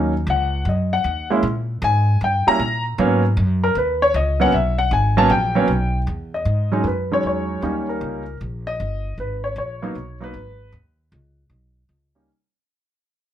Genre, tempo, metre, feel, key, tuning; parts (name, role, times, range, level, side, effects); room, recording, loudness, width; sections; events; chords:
jazz piano trio; 155 BPM; 4/4; swing 67% on 8ths; G# minor; A4 = 440 Hz
warm concert grand piano; melody; 0.0-12.3 s; F#3 to Bb5; -19 LUFS; equal
upright bass; bass; 0.0-12.3 s; G1 to A#2; -22 LUFS; equal
light reverb; -18 LUFS; side -11 dB against mid
0.0-6.1 A section; 6.1-12.3 B section
fade-out 6.1-12.3
0.0 D#m7; 1.4 G#sus2; 2.2 Gm; 3.0 G#m11; 6.1 Emaj13; 7.6 D#7; 9.2 G#madd9; 10.7 D#7(no3)